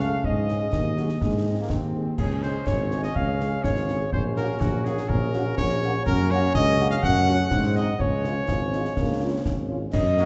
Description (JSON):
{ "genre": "military-style march for wind band", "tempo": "124 BPM", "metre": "2/4", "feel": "straight", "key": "Db major", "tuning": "A4 = 440 Hz", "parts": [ { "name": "clear cornet", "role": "melody", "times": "0.0-10.3 s", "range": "Gb4 to Gb5", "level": "-34 LUFS", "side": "equal", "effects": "none" }, { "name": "clear woodwind section", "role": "second line", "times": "0.0-10.3 s", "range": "Gb4 to Gb5", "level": "-32 LUFS", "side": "equal", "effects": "none" }, { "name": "mellow French horn section", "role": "accompaniment", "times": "0.0-10.3 s", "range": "Gb3 to A4", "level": "-38 LUFS", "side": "equal", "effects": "none" }, { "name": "bright trombone section", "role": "sustained chords", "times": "0.0-10.3 s", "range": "Eb3 to Db4", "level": "-36 LUFS", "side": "equal", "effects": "none" }, { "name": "mellow tuba", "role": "bass", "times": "0.0-10.3 s", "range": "Ab1 to Ab2", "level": "-28 LUFS", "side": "equal", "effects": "none" }, { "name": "concert snare drum, concert bass drum and clash cymbals", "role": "drums", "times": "0.0-10.3 s", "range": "none", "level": "-31 LUFS", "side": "equal", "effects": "none" }, { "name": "warm euphonium", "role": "second line", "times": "8.5-9.9 s", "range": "F3 to Db4", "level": "-36 LUFS", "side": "equal", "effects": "none" } ], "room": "wet scoring stage reverb, RT60 1.8 s", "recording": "heard from further back in the room, nothing above 8.0 kHz", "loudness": "-24 LUFS", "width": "mono", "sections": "0.0-9.9 A section", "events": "none", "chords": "0.3 Absus4; 1.2 Ab; 2.2 Db; 4.1 Gb/Bb; 6.1 Gb; 7.0 Gbm; 7.5 Ab7; 8.0 Db" }